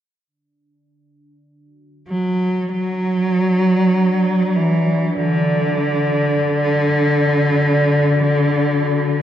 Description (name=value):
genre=ambient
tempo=free time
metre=none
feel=none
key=unclear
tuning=A4 = 437 Hz
part: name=dark analog pad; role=sustained chords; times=3.4-9.2 s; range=D4 to D5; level=-25 LUFS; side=right 1 dB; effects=chorus, phaser
part: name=rich cello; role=melody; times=2.1-9.2 s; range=D3 to F#3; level=-15 LUFS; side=equal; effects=tape echo
room=wet cathedral reverb, RT60 6.6 s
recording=worn, warbling old tape, cassette tape, warbly pitch drift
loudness=-15 LUFS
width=side -10 dB against mid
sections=0.3-9.2 A section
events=fade-in on analog synth pad 0.3-9.2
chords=0.3 E7sus2 (rootless)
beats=free time